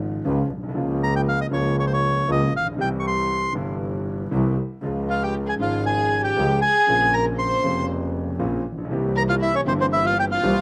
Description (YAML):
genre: tango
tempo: 118 BPM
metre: 4/4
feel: rubato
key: unclear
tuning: A4 = 442 Hz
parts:
  - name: warm concert grand piano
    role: accompaniment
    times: 0.0-10.6 s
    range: F1 to G4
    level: -28 LUFS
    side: equal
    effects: slapback echo
  - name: rich double bass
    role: bass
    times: 0.0-10.6 s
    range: F1 to Db2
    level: -28 LUFS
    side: equal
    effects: none
  - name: bandoneon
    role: melody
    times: 1.0-10.6 s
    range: C5 to Db6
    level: -24 LUFS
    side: equal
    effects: none
  - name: warm studio violin section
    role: second line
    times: 5.1-10.6 s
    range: C4 to C5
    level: -29 LUFS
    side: equal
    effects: none
room: little or no reverb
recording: recorded outdoors, with no room sound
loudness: -22 LUFS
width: mono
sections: 0.0-10.6 A section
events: none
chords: 0.0 Db; 0.8 Bbm/Db; 2.8 C; 4.8 Db; 6.9 Bbmadd9; 8.9 C7